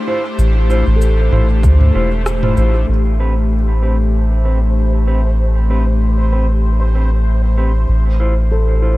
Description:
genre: ambient dub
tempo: 96 BPM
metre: 4/4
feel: swing 55% on 16ths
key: A minor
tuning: A4 = 440 Hz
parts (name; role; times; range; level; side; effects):
- airy breathy pad; sustained chords; 0.0-9.0 s; A3 to C5; -22 LUFS; left 4 dB; chorus
- felt-muted upright piano; arpeggios; 0.0-3.5, 8.5-9.0 s; A4 to C6; -30 LUFS; left 2 dB; dub echo
- mellow electric guitar; stabs; 0.1-9.0 s; C4 to C5; -24 LUFS; right 2 dB; dub echo
- soft dub sub bass; bass; 0.4-9.0 s; E1 to D2; -13 LUFS; equal; none
- organic electronic drum kit; drums; 0.4-2.7 s; cabasa, rim click, toms; -23 LUFS; equal; low-pass filter on perc, small room reverb, low-pass filter on toms, low-pass filter on snare, dub echo
- electronic kick drum; drums; 1.6-1.8 s; none; -16 LUFS; equal; small room reverb
- bubbling stepped-filter texture; texture; 2.9-9.0 s; C5; -30 LUFS; equal; chorus, built-in reverb
room: little or no reverb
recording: dark, warm production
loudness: -12 LUFS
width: side -18 dB against mid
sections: 0.0-2.9 A section; 2.9-9.0 B section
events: none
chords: 0.0 Dm9/A; 2.9 Am9; 7.9 Dm9/A

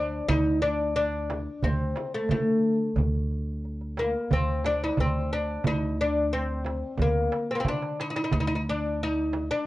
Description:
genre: Arabic maqam ensemble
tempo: 90 BPM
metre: 4/4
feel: straight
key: D maqam hijaz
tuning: A4 = 442 Hz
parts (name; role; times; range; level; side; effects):
- oud; melody; 0.0-9.7 s; A3 to Eb4+25c; -26 LUFS; left 1 dB; none
- upright bass; bass; 0.0-9.5 s; D2 to D3; -30 LUFS; equal; none
- darbuka; percussion; 0.3-9.5 s; none; -32 LUFS; right 3 dB; none
- frame drum; percussion; 0.3-9.5 s; none; -34 LUFS; right 2 dB; none
room: moderate studio ambience, RT60 0.5 s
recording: worn, warbling old tape, cassette tape, warbly pitch drift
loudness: -24 LUFS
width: side -16 dB against mid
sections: 0.0-9.7 A section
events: drum fill 7.7-8.3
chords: none

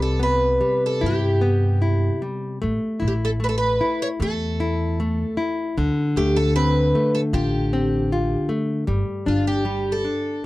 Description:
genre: fado-style ballad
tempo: 76 BPM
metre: 4/4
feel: rubato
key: C major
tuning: A4 = 440 Hz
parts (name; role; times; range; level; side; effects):
- picked twelve-string acoustic guitar; melody; 0.0-10.5 s; F4 to Db5; -24 LUFS; right 1 dB; none
- nylon-string guitar; accompaniment; 0.0-10.4 s; C3 to F4; -23 LUFS; left 2 dB; none
- upright bass; bass; 0.0-10.0 s; G1 to G2; -23 LUFS; equal; none
room: light reverb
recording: dry, close 1970s-style studio recording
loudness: -19 LUFS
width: side -18 dB against mid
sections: 0.0-10.5 A section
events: none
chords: 0.0 Cmaj7; 2.6 A5; 5.8 Dm7; 8.9 G5

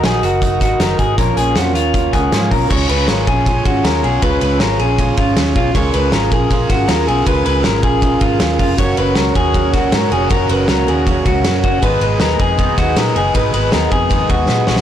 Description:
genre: jangly indie pop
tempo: 158 BPM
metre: 4/4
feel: straight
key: unclear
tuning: A4 = 440 Hz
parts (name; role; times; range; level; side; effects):
- combo organ; accompaniment; 0.0-14.8 s; F4 to Bb5; -21 LUFS; right 4 dB; none
- picked steel-string acoustic guitar; accompaniment; 0.0-14.8 s; Ab2 to Bb4; -22 LUFS; right 2 dB; none
- electric guitar through a small old amp; arpeggios; 0.0-14.8 s; F4 to Db5; -18 LUFS; left 4 dB; spring reverb
- vintage muted fingered electric bass; bass; 0.0-14.8 s; F1 to Bb2; -19 LUFS; equal; none
- loose indie drum kit; drums; 0.0-14.8 s; crash cymbal, hi-hat, kick drum, ride cymbal, snare drum; -18 LUFS; equal; none
- phased analog pad; sustained chords; 8.8-14.8 s; Bb2 to Ab4; -24 LUFS; equal; phaser, chorus
room: moderate small room reverb, RT60 0.5 s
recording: blown-out, overdriven recording, overdrive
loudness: -12 LUFS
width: side -10 dB against mid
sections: 0.0-2.7 A section; 2.7-14.8 B section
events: transistor combo organ fill 1.9-2.7; drum fill 14.5-14.8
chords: 0.0 Ebm; 1.2 Bbm; 2.7 Db; 11.8 Abm

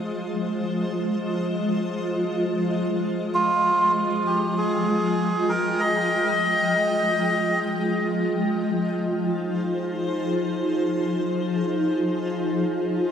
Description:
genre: ambient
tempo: free time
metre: none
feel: none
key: F minor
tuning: A4 = 445 Hz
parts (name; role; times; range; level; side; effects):
- granular cloud pad; sustained chords; 0.0-13.1 s; F3 to G5; -23 LUFS; equal; built-in reverb
- melodica; melody; 3.3-7.6 s; F4 to Eb5; -22 LUFS; right 1 dB; dub echo
room: wet lush hall reverb, RT60 2.3 s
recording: none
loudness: -21 LUFS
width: side -8 dB against mid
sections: 0.0-8.2 A section; 8.2-13.1 B section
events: none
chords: 0.0 Fm7

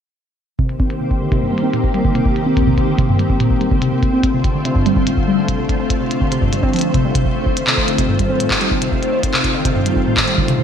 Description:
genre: IDM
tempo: 144 BPM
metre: 4/4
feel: straight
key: C dorian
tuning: A4 = 438 Hz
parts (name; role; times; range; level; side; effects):
- soft string machine; sustained chords; 0.7-10.6 s; D3 to C5; -19 LUFS; left 1 dB; ensemble chorus
- warbly dusty pluck; arpeggios; 0.6-10.6 s; G2 to C4; -19 LUFS; right 1 dB; chorus, phaser, ping-pong delay
- electronic kick drum; drums; 0.6-10.5 s; none; -20 LUFS; equal; overdrive
- glitchy drum kit; drums; 0.7-10.6 s; handclaps, hi-hat; -20 LUFS; equal; low-pass filter on hats, low-pass filter on snare, low-pass filter on room, gated reverb, ping-pong delay
room: wet lush hall reverb, RT60 1.6 s, digital ambience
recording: bright 1980s-style digital production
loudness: -14 LUFS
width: side -8 dB against mid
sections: 0.6-10.6 A section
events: filter sweep on synth pluck 0.6-10.6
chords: 0.6 Cm7; 3.9 Dm7; 7.3 F7

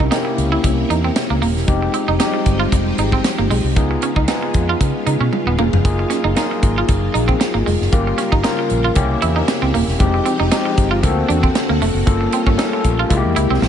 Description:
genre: polished 1980s jazz-funk pop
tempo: 116 BPM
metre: 4/4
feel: swing 54% on 16ths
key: F minor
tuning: A4 = 438 Hz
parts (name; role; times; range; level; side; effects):
- overdriven tine electric piano; accompaniment; 0.0-13.7 s; G3 to Bb4; -20 LUFS; left 3 dB; lush chorus
- string machine, violins; sustained chords; 0.0-13.7 s; C3 to Bb4; -24 LUFS; equal; ensemble chorus
- electric guitar at the edge of break-up; riff; 0.0-13.7 s; Ab3 to F4; -22 LUFS; right 6 dB; wide subtle chorus
- vintage muted fingered electric bass; bass; 0.0-13.7 s; Eb1 to Db3; -20 LUFS; equal; none
- tight funk drum kit; drums; 0.0-13.7 s; hi-hat, kick drum, snare drum, toms; -19 LUFS; equal; gated reverb
room: small room ambience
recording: nothing above 11.0 kHz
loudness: -14 LUFS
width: side -9 dB against mid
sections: 0.0-13.7 A section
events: drum fill 5.3-5.8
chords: 0.0 C7b9; 1.7 Fm9; 3.8 Db7; 5.8 Gbmaj13; 7.9 Gm7b5; 9.0 C7b9; 10.0 Fm9; 11.0 D7b13; 12.1 Gm7b5; 13.1 C7b13

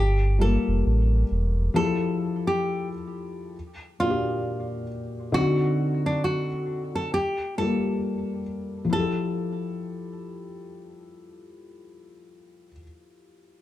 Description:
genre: lo-fi hip hop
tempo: 67 BPM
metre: 4/4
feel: swing 59% on 16ths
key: F major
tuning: A4 = 442 Hz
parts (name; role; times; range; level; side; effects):
- nylon-string guitar; melody; 0.0-11.6 s; D4 to A4; -28 LUFS; equal; plate reverb
- sub bass with octave; bass; 0.0-1.7 s; E1 to A1; -21 LUFS; equal; none
- felt-muted upright piano; accompaniment; 0.4-13.6 s; Bb2 to A4; -27 LUFS; left 2 dB; none
room: moderate studio reverb, RT60 0.5 s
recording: dark, warm production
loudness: -23 LUFS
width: side -14 dB against mid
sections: 0.0-8.9 A section; 8.9-12.5 B section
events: none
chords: 0.0 Gm9; 1.8 Fmaj9; 3.5 Bb6; 5.3 D7b9; 7.1 Gm9; 8.9 Fmaj9

